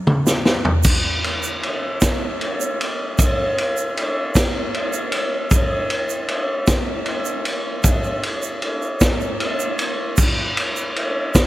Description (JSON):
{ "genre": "rock", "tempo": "52 BPM (dotted quarters)", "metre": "6/8", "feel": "straight", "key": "none", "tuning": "none", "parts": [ { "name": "vintage drum kit", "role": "drums", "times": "0.1-11.5 s", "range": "crash cymbal, kick drum, ride cymbal, snare drum, toms", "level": "-18 LUFS", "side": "equal", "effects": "none" }, { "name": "tube shaker", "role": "percussion", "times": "0.3-11.5 s", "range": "none", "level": "-28 LUFS", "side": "right 10 dB", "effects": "none" } ], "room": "light reverb", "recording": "none", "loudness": "-18 LUFS", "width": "side -16 dB against mid", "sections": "0.9-11.5 A section", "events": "drum fill 0.0-0.9", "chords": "none", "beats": "| 0.85 2.02 | 3.19 4.35 | 5.52 6.68 | 7.85 9.01 | 10.18 11.34" }